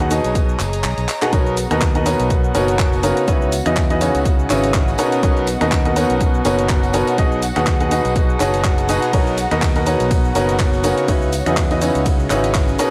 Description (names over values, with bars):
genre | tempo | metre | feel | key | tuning
piano house | 123 BPM | 4/4 | swing 56% on 16ths | B major | A4 = 440 Hz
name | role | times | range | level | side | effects
muted chamber violin section | sustained chords | 0.0-12.9 s | F#4 to A#5 | -30 LUFS | equal | sidechain pumping, cassette tape
bright upright piano | riff | 0.0-12.9 s | B2 to F#5 | -21 LUFS | equal | sidechain pumping, cassette tape, analog delay
fingered electric bass | bass | 0.0-12.7 s | F#1 to E2 | -25 LUFS | equal | sidechain pumping
house drum kit | drums | 0.0-12.9 s | finger snaps, handclaps, hi-hat, ride cymbal, shaker | -29 LUFS | equal | cassette tape
airy breathy pad | texture | 0.2-12.9 s | B3 to A#5 | -28 LUFS | equal | chorus, sidechain pumping, cassette tape
dusty soul sampler-style drum kit | drums | 0.1-12.9 s | none | barely audible | none | none
tambourine | percussion | 0.1-12.9 s | none | -39 LUFS | equal | none
electronic kick drum | drums | 0.4-12.7 s | none | -20 LUFS | equal | cassette tape
room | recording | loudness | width
light reverb | home recording on cassette | -17 LUFS | mono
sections
0.0-12.9 A section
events
kick drops out 0.8-1.3; drum fill 1.1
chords
0.0 Bmaj9; 3.3 C#m11; 5.0 Bmaj9; 11.1 C#m11